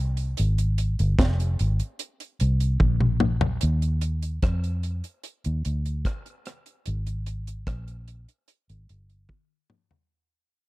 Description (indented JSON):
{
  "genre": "lovers rock reggae",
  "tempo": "74 BPM",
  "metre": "4/4",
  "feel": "straight",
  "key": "Eb major",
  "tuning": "A4 = 441 Hz",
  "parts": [
    { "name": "vintage muted fingered electric bass", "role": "bass", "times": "0.0-9.3 s", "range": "F1 to F2", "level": "-24 LUFS", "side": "equal", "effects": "none" },
    { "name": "deep reggae drum kit", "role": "drums", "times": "0.2-10.1 s", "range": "hi-hat, kick drum, rim click, snare drum, toms", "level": "-25 LUFS", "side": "equal", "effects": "none" }
  ],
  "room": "little or no reverb",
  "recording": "dark, warm production",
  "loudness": "-23 LUFS",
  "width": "side -19 dB against mid",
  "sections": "0.0-3.6 A section; 3.6-10.1 B section",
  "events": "drum fill 2.8-3.6, 9.3-10.1; fade-out 3.6-10.1",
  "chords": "none"
}